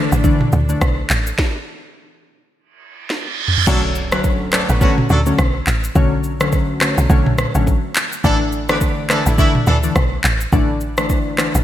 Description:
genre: afrobeats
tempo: 105 BPM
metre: 4/4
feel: swing 58% on 16ths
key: B minor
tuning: A4 = 440 Hz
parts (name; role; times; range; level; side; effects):
- glassy digital keys; accompaniment; 0.0-11.6 s; D3 to D4; -20 LUFS; left 2 dB; chorus
- warm studio string section; sustained chords; 0.0-1.4 s; E3 to A4; -29 LUFS; right 1 dB; none
- woody log drum bass; bass; 0.0-11.6 s; A1 to D2; -19 LUFS; equal; none
- afro-pop drum kit; drums; 0.1-11.6 s; crash cymbal, handclaps, kick drum, rim click, shaker, snare drum, toms; -18 LUFS; equal; gated reverb
- reverse cymbal and impact; sound effects; 3.0-6.0 s; none; -24 LUFS; right 5 dB; none
- warm horn section; second line; 3.7-9.8 s; D3 to B4; -23 LUFS; right 1 dB; none
room: moderate lush hall reverb, RT60 1.7 s, digital ambience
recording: bright 1980s-style digital production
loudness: -14 LUFS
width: side -12 dB against mid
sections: 0.0-3.7 A section; 3.7-11.6 B section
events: stop 1.4-3.7; reverse cymbal 3.0-3.7; drum fill 3.1-3.7; impact 3.7-6.0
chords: 0.0 Asus4; 3.7 Bm7; 8.2 Asus4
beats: 0.24 0.81 | 1.39 1.96 2.53 3.10 | 3.67 4.24 4.81 5.38 | 5.96 6.53 7.10 7.67 | 8.24 8.81 9.38 9.96 | 10.53 11.10

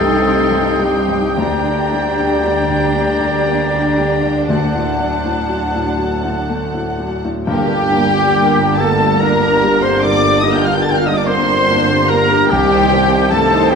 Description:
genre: classical, romantic movement for piano and orchestra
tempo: 34-50 BPM (dotted quarters)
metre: 12/8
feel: rubato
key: G minor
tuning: A4 = 444 Hz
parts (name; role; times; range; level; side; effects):
- dark symphonic violin section; melody; 0.0-13.8 s; G5 to A6; -22 LUFS; left 4 dB; none
- warm concert grand piano; melody; 0.0-13.8 s; C2 to D4; -19 LUFS; left 2 dB; none
- clear oboe; second line; 0.0-13.8 s; G4 to A5; -24 LUFS; right 2 dB; none
- mellow hollow concert flute; second line; 0.0-13.8 s; G5 to A6; -23 LUFS; left 2 dB; none
- warm clarinet; second line; 0.0-13.8 s; G4 to A5; -22 LUFS; equal; none
- warm symphonic violin section; second line; 0.0-13.8 s; G4 to A5; -23 LUFS; left 3 dB; none
- warm symphonic viola section; accompaniment; 0.0-13.8 s; Bb3 to C5; -24 LUFS; right 3 dB; none
- dark French horn section; sustained chords; 0.0-13.8 s; G3 to A4; -23 LUFS; left 1 dB; none
- rich symphonic cello section; bass; 0.0-13.8 s; G2 to D4; -25 LUFS; right 4 dB; none
- warm symphonic double bass section; bass; 0.0-13.8 s; G1 to D2; -26 LUFS; right 5 dB; none
- timpani; percussion; 1.4-8.8 s; G2 to D3; -26 LUFS; left 1 dB; none
- clear trombone section; sustained chords; 7.5-13.8 s; D3 to Bb3; -23 LUFS; right 4 dB; none
- warm trumpet; stabs; 7.5-13.8 s; G4 to A5; -21 LUFS; right 2 dB; none
- mellow tuba; bass; 7.5-13.8 s; G1 to C2; -25 LUFS; right 2 dB; none
room: wet scoring stage reverb, RT60 1.6 s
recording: minimal, uncompressed stereo recording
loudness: -12 LUFS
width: side -6 dB against mid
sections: 0.0-7.5 A section; 7.5-13.8 B section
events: none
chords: 0.0 Cm; 1.4 Gm/D; 4.5 D; 7.5 Gm; 12.5 Cm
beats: | 1.39 2.96 4.48 5.98 | 7.49 8.80 10.05 11.29 | 12.51 13.71

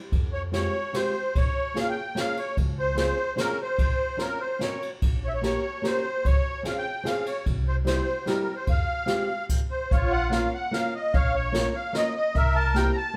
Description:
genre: musette waltz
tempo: 148 BPM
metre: 3/4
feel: straight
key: F harmonic minor, Bb harmonic minor from 9.9 s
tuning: A4 = 439 Hz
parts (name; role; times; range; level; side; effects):
- upright bass; bass; 0.1-12.9 s; Bb1 to F2; -30 LUFS; equal; none
- jazz brush drum kit; drums; 0.1-12.8 s; crash cymbal, hi-hat, kick drum, ride cymbal, snare drum; -31 LUFS; equal; none
- musette accordion; melody; 0.3-13.2 s; F4 to Bb5; -30 LUFS; equal; none
- fingerpicked plugged-in steel-string acoustic guitar; accompaniment; 0.5-13.2 s; G3 to Bb4; -33 LUFS; equal; none
room: moderate stone room reverb, RT60 1.2 s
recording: band playing live in one room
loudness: -26 LUFS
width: mono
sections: 0.0-9.9 A section; 9.9-13.2 B section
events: none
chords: 0.1 Fmadd9; 1.4 Bbm7; 2.6 Dbmaj7; 3.8 Bbmadd9; 5.0 Gdim/Bb; 6.2 Dbmaj7; 7.5 C; 8.7 Fmadd9; 9.9 Bbm; 12.3 C7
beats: | 0.12 0.53 0.94 | 1.35 1.76 2.17 | 2.57 2.97 3.37 | 3.78 4.18 4.60 | 5.01 5.42 5.83 | 6.24 6.65 7.05 | 7.46 7.86 8.27 | 8.67 9.08 9.49 | 9.91 10.32 10.73 | 11.13 11.54 11.94 | 12.35 12.75 13.16

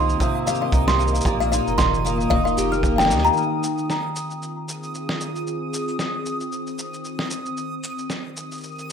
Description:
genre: folktronica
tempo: 114 BPM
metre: 4/4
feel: swing 56% on 16ths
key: F minor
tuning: A4 = 440 Hz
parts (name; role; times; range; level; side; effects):
- kalimba; second line; 0.0-3.4 s; F5 to F6; -23 LUFS; left 2 dB; digital delay
- warbly tape-like pad; sustained chords; 0.0-8.9 s; Eb3 to Bb4; -29 LUFS; equal; chorus, built-in reverb
- picked twelve-string acoustic guitar; arpeggios; 0.0-3.9 s; Bb2 to G4; -25 LUFS; equal; wide subtle chorus, ping-pong delay
- warm sub bass; bass; 0.0-3.3 s; Eb1 to Eb2; -25 LUFS; right 1 dB; none
- backwards swelling texture; texture; 0.0-8.9 s; Eb6; -33 LUFS; right 2 dB; built-in reverb
- electronic cabasa and snare drum; drums; 0.1-8.9 s; none; -29 LUFS; equal; none
- kick drum; drums; 0.2-3.0 s; none; -25 LUFS; equal; none
room: light reverb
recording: rough home demo mix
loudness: -20 LUFS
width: side -7 dB against mid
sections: 0.0-3.4 A section; 3.4-8.9 B section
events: band accent 3.0; filter sweep on ambient pad 3.4-8.9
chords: 0.0 Cm7; 1.3 Bbsus4; 2.3 Eb; 3.4 Fm7; 7.6 Cm7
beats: 0.20 0.73 | 1.26 1.78 2.31 2.84 | 3.36 3.89 4.42 4.94 | 5.47 6.00 6.52 7.05 | 7.57 8.10 8.63

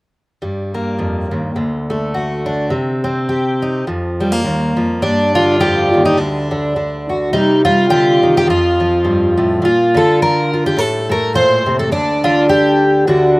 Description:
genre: folk, solo fingerstyle acoustic guitar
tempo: 104 BPM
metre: 4/4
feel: swing 57% on 8ths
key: G minor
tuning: A4 = 440 Hz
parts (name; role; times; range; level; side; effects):
- fingerpicked twelve-string acoustic guitar; solo; 0.4-13.4 s; D2 to C5; -12 LUFS; equal; slapback echo
room: little or no reverb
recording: recorded outdoors, with no room sound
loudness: -12 LUFS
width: side -23 dB against mid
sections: 0.4-5.0 A section; 5.0-13.4 B section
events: none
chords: 0.4 Gm; 1.6 D; 2.7 Cm; 3.9 Fsus4; 5.0 G5; 6.2 D; 7.3 Cm; 8.5 Fadd9; 9.6 Bb; 10.8 Am; 11.9 N.C.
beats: | 0.41 0.99 1.57 2.15 | 2.72 3.30 3.87 4.45 | 5.02 5.60 6.17 6.75 | 7.32 7.90 8.47 9.05 | 9.62 10.20 10.78 11.35 | 11.93 12.50 13.08

